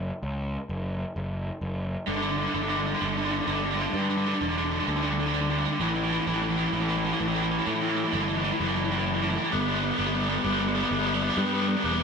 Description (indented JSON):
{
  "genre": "post-rock",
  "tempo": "64 BPM",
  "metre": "4/4",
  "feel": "straight",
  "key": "G major",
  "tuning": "A4 = 439 Hz",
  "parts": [
    { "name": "fuzz picked electric bass", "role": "bass", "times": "0.0-12.0 s", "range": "E1 to A2", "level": "-29 LUFS", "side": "equal", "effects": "overdrive" },
    { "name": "overdriven electric guitar", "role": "riff", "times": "2.1-12.0 s", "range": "G2 to B3", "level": "-25 LUFS", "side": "equal", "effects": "harmonic tremolo" }
  ],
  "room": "moderate studio reverb, RT60 0.7 s",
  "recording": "band playing live in one room, nothing above 10.4 kHz",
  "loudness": "-24 LUFS",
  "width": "side -5 dB against mid",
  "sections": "0.0-2.1 A section; 2.1-12.0 B section",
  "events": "build-up 2.1-12.0",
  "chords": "0.0 F#5; 2.1 G5; 5.8 A5; 9.5 G"
}